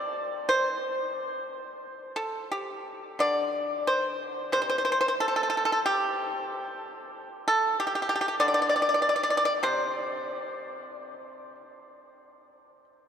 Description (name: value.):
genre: chinese traditional, Chinese solo plucked strings.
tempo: 84-98 BPM.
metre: 4/4.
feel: rubato.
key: unclear.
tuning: A4 = 441 Hz.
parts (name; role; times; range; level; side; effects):
pipa; solo; 0.0-12.8 s; C3 to D5; -26 LUFS; equal; none.
room: wet cathedral reverb, RT60 6.2 s.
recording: in a vast, echoing space.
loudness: -25 LUFS.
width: side -8 dB against mid.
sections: 0.0-3.2 A section; 3.2-13.1 B section.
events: none.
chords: none.